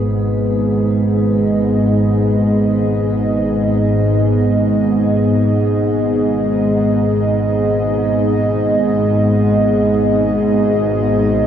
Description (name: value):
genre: dark ambient drone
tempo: free time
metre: none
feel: none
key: G# minor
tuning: A4 = 441 Hz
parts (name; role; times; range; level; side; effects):
- dark analog pad; sustained chords; 0.0-11.5 s; B3 to D#5; -17 LUFS; right 1 dB; chorus, shimmer reverb
- bowed-like drone; drone; 0.0-11.5 s; G#1 to G#2; -15 LUFS; equal; built-in reverb
- bronze singing bowl; texture; 0.0-11.5 s; B4; -32 LUFS; left 5 dB; shimmer reverb
room: wet huge ambient reverb, RT60 8.9 s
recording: in a vast, echoing space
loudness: -13 LUFS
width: side -9 dB against mid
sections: 0.0-11.5 A section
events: filter sweep on synth drone 0.0-11.5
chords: 0.0 G#m